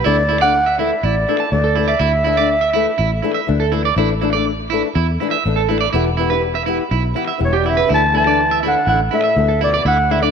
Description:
highlife; 122 BPM; 4/4; straight; A4 = 439 Hz
electric guitar at the edge of break-up; arpeggios; 0.0-10.3 s; E4 to A5; -20 LUFS; right 9 dB; lush chorus, slapback echo
growling clarinet; melody; 0.1-3.7, 7.4-10.3 s; C#5 to A5; -16 LUFS; equal; slapback echo
fingerpicked old ladder-braced acoustic guitar; accompaniment; 0.1-10.3 s; E3 to A4; -22 LUFS; left 14 dB
fingered electric bass; bass; 0.1-10.3 s; E1 to E2; -20 LUFS; equal
breathy trombone; second line; 7.4-10.3 s; G2 to E3; -25 LUFS; right 10 dB
moderate plate reverb, RT60 2.7 s; 1960s-style stereo with parts hard left and right; -14 LUFS; side -6 dB against mid
0.1-10.3 A section
0.1 Asus4; 5.9 Em; 7.9 Dsus2

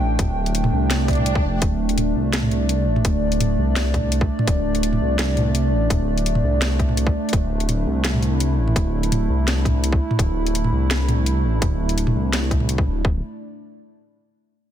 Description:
half-time drum and bass; 168 BPM; 4/4; half-time; A4 = 440 Hz
dark analog pad; sustained chords; 0.0-13.2 s; A3 to G5; -24 LUFS; right 2 dB; chorus, sidechain pumping
dark detuned saw bass; bass; 0.0-13.2 s; D1 to C2; -21 LUFS; equal
drum and bass drum kit; drums; 0.2-12.8 s; hi-hat, snare drum, toms; -25 LUFS; equal; overdrive
electronic kick drum; drums; 0.2-13.1 s; -21 LUFS; equal; overdrive
swell; sound effects; 1.0-1.6 s; -28 LUFS; right 2 dB
light reverb, digital ambience; dense, heavily limited modern master; -18 LUFS; side -10 dB against mid
0.0-13.0 A section; 13.0-14.5 B section
drop 0.0-13.0; swell 1.0-1.6
0.0 D5

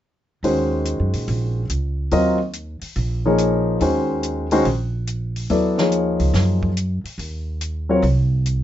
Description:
modal jazz; 142 BPM; 4/4; swing 67% on 8ths; Eb dorian; A4 = 440 Hz
warm grand piano; accompaniment; 0.4-8.0 s; Eb3 to Eb5; -19 LUFS; left 1 dB
upright bass; bass; 0.4-8.6 s; Bb1 to Bb2; -22 LUFS; right 1 dB
compact cocktail drum kit; drums; 0.4-8.6 s; hi-hat, kick drum, snare drum; -32 LUFS; equal
light reverb; nothing above 7.7 kHz; -18 LUFS; side -12 dB against mid
0.4-8.6 A section
0.4 Ebm9; 7.2 F7(no3) (rootless)

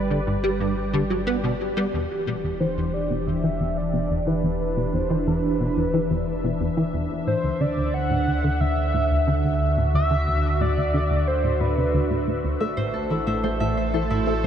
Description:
ambient, sequencer-driven space music; 90 BPM; 4/4; straight; E minor; A4 = 441 Hz
pulse-width lead; melody; 0.0-12.3 s; B4 to F#5; -28 LUFS; equal; chorus, ping-pong delay
phased analog pad; sustained chords; 0.0-14.5 s; D3 to E5; -27 LUFS; right 1 dB; phaser, chorus
warm sub bass; bass; 0.0-14.5 s; E1 to D2; -27 LUFS; equal
plucky analog bass; riff; 0.1-14.5 s; D2 to B3; -26 LUFS; equal; ensemble chorus, ping-pong delay
concert harp; arpeggios; 12.6-14.5 s; E4 to E5; -27 LUFS; equal; auto-pan, ping-pong delay
moderate huge ambient reverb, RT60 8.4 s; dreamy mix soaked in reverb; -21 LUFS; side -9 dB against mid
0.0-1.9 A section; 1.9-14.5 B section
filter sweep on analog synth bass 1.9-14.5
0.0 G; 1.9 Em7; 7.3 Dadd9; 12.6 Am

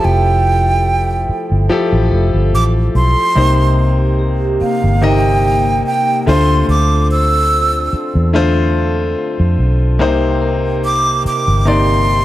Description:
soul; 72 BPM; 4/4; swing 54% on 16ths; F major; A4 = 441 Hz
breathy jazz flute; melody; 0.0-12.2 s; F5 to E6; -16 LUFS; right 2 dB; slapback echo
bright concert grand piano; accompaniment; 0.0-12.2 s; C3 to Eb5; -18 LUFS; left 2 dB
mellow French horn section; sustained chords; 0.0-12.2 s; F3 to A4; -25 LUFS; right 2 dB
vintage muted fingered electric bass; bass; 0.0-12.2 s; F1 to F2; -14 LUFS; equal
vibraphone with soft mallets; texture; 4.2-12.2 s; Bb3 to C5; -25 LUFS; left 1 dB
light reverb, small room ambience; -11 LUFS; side -14 dB against mid
0.0-12.2 A section
0.0 Fmaj9; 3.4 Cm7; 6.3 Dm7; 10.0 Cm7

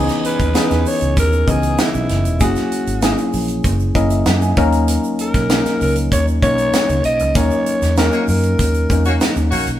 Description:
polished 1980s jazz-funk pop; 97 BPM; 4/4; straight; A4 = 440 Hz
tine electric piano; accompaniment; 0.0-9.8 s; E3 to A#5; -19 LUFS; left 2 dB
vintage muted fingered electric bass; bass; 0.0-9.8 s; E1 to F#2; -19 LUFS; right 1 dB
tight funk drum kit; drums; 0.1-9.8 s; hi-hat, kick drum, snare drum; -20 LUFS; right 1 dB
egg shaker; percussion; 0.1-9.8 s; -38 LUFS; right 6 dB
breathy alto saxophone; melody; 0.3-9.2 s; E4 to D#5; -20 LUFS; equal
warm horn section; second line; 8.1-9.7 s; A#3 to C#5; -23 LUFS; left 1 dB
moderate stone room reverb, RT60 1.3 s; band playing live in one room; -14 LUFS; side -12 dB against mid
0.0-9.8 A section
tine electric piano fill 3.6-4.9; band accent 7.4-9.8
0.0 C#m7; 2.4 F#7; 4.6 D#m7

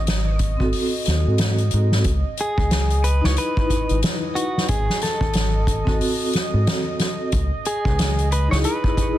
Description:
trip hop; 91 BPM; 4/4; swing 60% on 16ths; C# minor; A4 = 440 Hz
clean electric guitar; melody; 0.0-9.2 s; F#4 to D#5; -26 LUFS; equal; dub echo
warbly tape-like pad; sustained chords; 0.0-9.2 s; D#5; -33 LUFS; right 2 dB; chorus, built-in reverb
deep dub fingered electric bass; bass; 0.0-8.6 s; G#1 to G#2; -20 LUFS; equal; tube saturation
soft-mallet drum kit; drums; 0.1-9.2 s; hi-hat, kick drum, snare drum; -23 LUFS; equal
vibraphone with medium mallets; accompaniment; 0.6-9.2 s; B#3 to B4; -26 LUFS; equal; tremolo
small room ambience; dense, heavily limited modern master, vinyl crackle; -18 LUFS; side -13 dB against mid
0.0-9.2 A section
0.0 G#7b9; 2.1 C#m7; 4.7 G#7b9; 7.3 C#m7

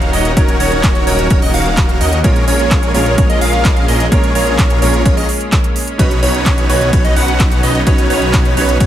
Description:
EDM, festival progressive house; 128 BPM; 4/4; straight; A4 = 443 Hz
clear grand piano; accompaniment; 0.0-8.9 s; Bb2 to B4; -22 LUFS; right 4 dB; sidechain pumping, dub echo
lush unison pad; sustained chords; 0.0-8.9 s; Eb3 to Gb4; -22 LUFS; left 1 dB; chorus, sidechain pumping
plucky unison lead; arpeggios; 0.0-8.9 s; Db5 to F#5; -20 LUFS; equal; sidechain pumping, dub echo
big supersaw lead; riff; 0.0-8.9 s; Db4 to F#5; -19 LUFS; right 1 dB; sidechain pumping, dub echo
detuned saw bass; bass; 0.0-8.9 s; Eb1 to Eb2; -18 LUFS; equal; sidechain pumping
big-room dance drum kit; drums; 0.0-8.9 s; handclaps, hi-hat, ride cymbal; -22 LUFS; right 1 dB; overdrive
electronic kick drum; drums; 0.4-8.9 s; -14 LUFS; equal; overdrive
digital ambience; -10 LUFS; side -11 dB against mid
0.0-8.9 A section
0.0 Ebm7; 2.2 Bbm7; 6.0 Badd9

